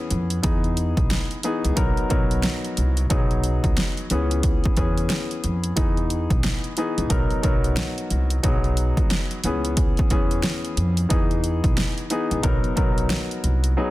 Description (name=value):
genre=hip hop, boom-bap hip-hop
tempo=90 BPM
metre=4/4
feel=swing 61% on 16ths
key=unclear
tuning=A4 = 439 Hz
part: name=dark concert grand piano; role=accompaniment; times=0.0-13.9 s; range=E3 to A#4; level=-26 LUFS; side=left 2 dB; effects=cassette tape, high-pass filter, low-pass filter
part: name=upright bass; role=bass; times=0.1-13.7 s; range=B1 to E#2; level=-24 LUFS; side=equal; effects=none
part: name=deep house drum kit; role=drums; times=0.1-13.8 s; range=hi-hat, kick drum, snare drum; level=-22 LUFS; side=equal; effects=overdrive
part: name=finger snaps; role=percussion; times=1.1-13.3 s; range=none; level=-41 LUFS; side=right 3 dB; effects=none
room=small room reverb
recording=dense, heavily limited modern master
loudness=-20 LUFS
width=side -16 dB against mid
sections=0.0-13.9 A section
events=none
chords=0.4 Emaj7; 1.8 Bmaj7; 3.1 G#m7/B; 4.1 C#m7; 5.8 Emaj7; 7.1 Bmaj7; 8.4 G#m7/B; 9.4 C#m7; 11.1 Emaj7; 12.4 Bmaj7